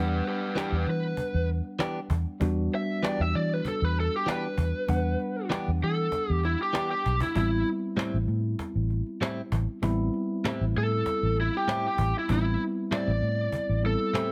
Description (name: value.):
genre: straight-eighth soul blues.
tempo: 97 BPM.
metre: 4/4.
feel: straight.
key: E minor.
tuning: A4 = 440 Hz.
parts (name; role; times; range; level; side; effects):
lead guitar through a small cranked amp; melody; 0.0-14.3 s; E4 to E5; -32 LUFS; equal; overdrive, plate reverb.
tine electric piano; accompaniment; 0.0-14.3 s; G3 to F#5; -35 LUFS; equal; none.
vintage muted fingered electric bass; bass; 0.0-13.9 s; A1 to E3; -29 LUFS; equal; none.
cajon; drums; 0.3-14.3 s; none; -37 LUFS; equal; none.
direct-recorded clean electric guitar; stabs; 0.6-14.3 s; A2 to G4; -34 LUFS; equal; none.
room: light reverb.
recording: none.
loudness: -28 LUFS.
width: mono.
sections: 0.0-14.3 A section.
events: lead electric guitar solo 0.0-14.3; drum fill 7.1-7.4.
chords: 0.0 Em7; 7.4 Am7.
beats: 0.56 1.18 1.80 | 2.42 3.04 3.66 4.27 | 4.89 5.51 6.13 6.74 | 7.36 7.98 8.60 9.21 | 9.83 10.45 11.06 11.68 | 12.29 12.91 13.53 14.14.